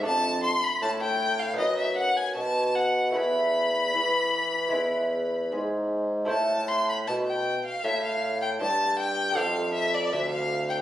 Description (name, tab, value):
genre	classical, baroque-style sonata movement with continuo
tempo	78 BPM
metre	4/4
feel	straight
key	A minor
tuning	A4 = 441 Hz
part	lute	accompaniment	0.0-10.8 s	D2 to D5	-32 LUFS	right 1 dB	none
part	warm bassoon	bass	0.0-10.8 s	D2 to E3	-28 LUFS	right 1 dB	none
part	warm violin	melody	0.1-10.8 s	D5 to C6	-26 LUFS	left 2 dB	none
room	moderate recital hall reverb, RT60 1.4 s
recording	recorded on a phone in the room, club reverb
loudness	-24 LUFS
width	side -12 dB against mid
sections	0.0-10.8 A section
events	none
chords	0.1 Dm/F; 1.6 B/F#; 3.2 Esus4; 4.7 E; 6.3 Am; 9.4 Dm/F